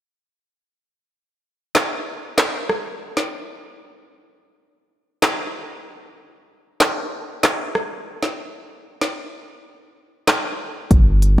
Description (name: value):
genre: dancehall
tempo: 95 BPM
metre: 4/4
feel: straight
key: unclear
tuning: A4 = 440 Hz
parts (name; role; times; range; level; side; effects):
- afro-pop drum kit; drums; 1.8-11.4 s; handclaps, hi-hat, kick drum, rim click, snare drum; -19 LUFS; equal; none
- saturated sub bass; bass; 10.9-11.4 s; G1; -15 LUFS; equal; none
room: moderate plate reverb, RT60 2.4 s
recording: dreamy mix soaked in reverb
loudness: -19 LUFS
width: side -13 dB against mid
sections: 0.8-10.9 A section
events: none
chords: none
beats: | 0.80 1.43 2.06 2.70 | 3.33 3.96 4.59 5.22 | 5.85 6.49 7.12 7.75 | 8.38 9.01 9.64 10.28 | 10.91